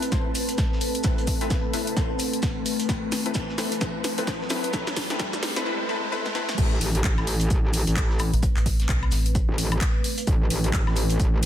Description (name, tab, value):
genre	bass house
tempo	130 BPM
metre	4/4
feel	swing 60% on 16ths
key	A minor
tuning	A4 = 440 Hz
part	deep dark ambient pad	sustained chords	0.0-11.5 s	A3 to B4	-33 LUFS	left 2 dB	chorus, built-in reverb, sidechain pumping
part	cloth-damped thuddy drum kit	drums	0.0-11.5 s	hi-hat, shaker, snare drum	-38 LUFS	right 1 dB	sidechain pumping on hats, high-pass filter on hats, high-pass filter on snare, sidechain pumping on perc, high-pass filter on perc, high-pass filter on room
part	house drum kit	drums	0.0-11.5 s	crash cymbal, handclaps, hi-hat, snare drum, woodblock	-30 LUFS	left 1 dB	soft clipping on snare
part	riser	sound effects	0.8-6.6 s	none	-36 LUFS	equal	none
part	airy breathy pad	texture	0.0-5.7 s	C4 to A5	-34 LUFS	right 2 dB	chorus, sidechain pumping
part	orchestra-hit-like synth stab	stabs	0.1-6.4 s	C4 to C5	-30 LUFS	left 2 dB	built-in reverb, sidechain pumping, tape echo
part	electronic kick drum	drums	0.1-11.3 s	none	-25 LUFS	equal	none
part	metallic wobble bass	bass	6.6-11.5 s	A1	-24 LUFS	equal	distortion, chorus, overdrive, sidechain pumping
part	metallic FM bass	bass	8.3-9.5 s	A1 to B1	-23 LUFS	equal	tube saturation, sidechain pumping
room	light reverb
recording	dense, heavily limited modern master, high-pass filter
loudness	-22 LUFS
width	side -11 dB against mid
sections	0.0-6.6 A section; 6.6-11.5 B section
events	build-up 0.0-6.6; drum fill 0.0-5.7, 6.2-6.6; filter sweep on synth stab 0.0-6.6; filter sweep 0.0-6.6; riser 0.8-6.6; drop 6.6-11.5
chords	0.0 Amadd9